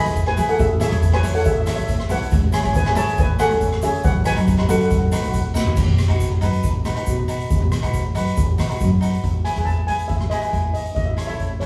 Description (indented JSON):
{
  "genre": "calypso",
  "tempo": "139 BPM",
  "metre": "4/4",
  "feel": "straight",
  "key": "unclear",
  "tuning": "A4 = 444 Hz",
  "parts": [
    { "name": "steel pan", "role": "melody", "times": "0.0-5.4, 9.4-11.7 s", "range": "G#4 to B5", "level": "-26 LUFS", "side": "equal", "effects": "none" },
    { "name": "cavaquinho", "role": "accompaniment", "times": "0.0-11.7 s", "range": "D#4 to C#5", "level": "-28 LUFS", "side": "equal", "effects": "none" },
    { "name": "upright bass", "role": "bass", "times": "0.1-11.7 s", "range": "G#1 to E3", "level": "-25 LUFS", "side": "equal", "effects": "none" },
    { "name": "street-band drum kit", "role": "drums", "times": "0.1-11.7 s", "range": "crash cymbal, hi-hat, kick drum, rim click, snare drum, toms", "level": "-23 LUFS", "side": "equal", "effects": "none" },
    { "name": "tube shaker", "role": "percussion", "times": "0.1-9.1 s", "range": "none", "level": "-44 LUFS", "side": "equal", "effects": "none" }
  ],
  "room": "wet large studio reverb, RT60 0.9 s",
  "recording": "band playing live in one room",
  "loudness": "-20 LUFS",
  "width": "mono",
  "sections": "0.0-5.8 A section; 5.8-9.2 B section; 9.2-11.7 C section",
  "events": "drum fill 5.6",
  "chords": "0.0 Emaj7; 0.6 Amaj7; 2.3 C#m7; 4.0 B; 9.2 Emaj7; 11.0 A"
}